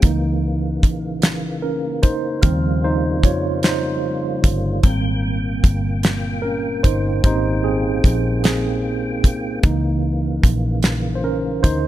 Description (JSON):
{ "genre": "slow six-eight R&B", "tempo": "50 BPM (dotted quarters)", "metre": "6/8", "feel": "straight", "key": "Ab major", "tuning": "A4 = 441 Hz", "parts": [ { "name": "mellow tine electric piano", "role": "accompaniment", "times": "0.0-11.9 s", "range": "Db3 to Db5", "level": "-22 LUFS", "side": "right 2 dB", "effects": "medium stereo tremolo" }, { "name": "percussive tonewheel organ", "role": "sustained chords", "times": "0.0-11.9 s", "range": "Bb2 to G5", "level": "-28 LUFS", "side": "left 2 dB", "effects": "overdrive, chorus vibrato, slow rotary speaker" }, { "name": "vintage muted fingered electric bass", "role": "bass", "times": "0.0-11.9 s", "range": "G1 to F2", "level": "-22 LUFS", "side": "equal", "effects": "none" }, { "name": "damped 70s drum kit", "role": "drums", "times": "0.0-11.8 s", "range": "hi-hat, kick drum, snare drum", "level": "-15 LUFS", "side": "equal", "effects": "none" } ], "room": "small room ambience", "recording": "none", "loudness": "-17 LUFS", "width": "side -13 dB against mid", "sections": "0.0-11.9 A section", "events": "tine electric piano solo 0.0-11.9", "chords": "0.0 Dbm6; 2.4 Eb13; 4.8 Abmaj9; 9.6 Dbm6" }